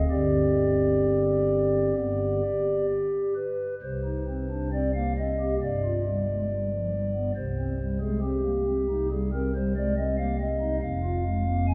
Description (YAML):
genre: classical, chorale-style piece for pipe organ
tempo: 63-70 BPM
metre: 4/4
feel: rubato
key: C minor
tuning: A4 = 444 Hz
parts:
  - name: pipe organ, stopped flute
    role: solo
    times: 0.0-11.7 s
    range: F1 to Ab5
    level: -26 LUFS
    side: equal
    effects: none
room: wet church reverb, RT60 3.1 s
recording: none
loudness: -27 LUFS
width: mono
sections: 0.0-3.8 A section; 3.8-11.7 B section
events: none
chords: 0.1 Gsus4; 2.0 G; 3.8 Cm; 5.6 G7(no3); 7.3 Cm; 10.8 Fm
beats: | 0.10 1.03 1.97 2.89 | 3.82 4.71 5.60 6.49 | 7.34 8.22 9.10 9.97 | 10.83 11.70